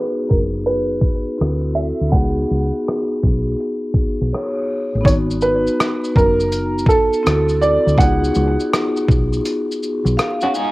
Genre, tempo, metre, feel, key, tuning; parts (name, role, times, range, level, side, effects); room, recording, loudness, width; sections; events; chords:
lo-fi hip hop; 82 BPM; 4/4; swing 66% on 16ths; A4 = 440 Hz
dark upright piano; melody; 0.0-8.7 s; A4 to F#5; -19 LUFS; right 2 dB; low-pass filter, cassette tape
vibraphone with medium hard mallets; accompaniment; 0.0-10.7 s; B3 to G#5; -21 LUFS; left 1 dB; low-pass filter, cassette tape
deep dub fingered electric bass; bass; 0.3-10.2 s; F#1 to D2; -20 LUFS; equal
dusty soul sampler-style drum kit; drums; 0.3-10.7 s; hi-hat, kick drum, rim click, shaker; -18 LUFS; equal; vintage 12-bit sampler grit, cassette tape
electric guitar through a small old amp; second line; 10.4-10.7 s; C#4 to G#4; -18 LUFS; right 1 dB; tremolo, low-pass filter, cassette tape
light reverb; home recording on cassette, vinyl crackle, low-pass filter; -15 LUFS; side -19 dB against mid
0.0-5.1 A section; 5.1-10.7 B section
filter sweep 0.0-5.1
0.0 G#m7; 1.4 D9; 2.1 C#9sus4; 5.1 G#m7; 7.2 D9; 8.0 C#9sus4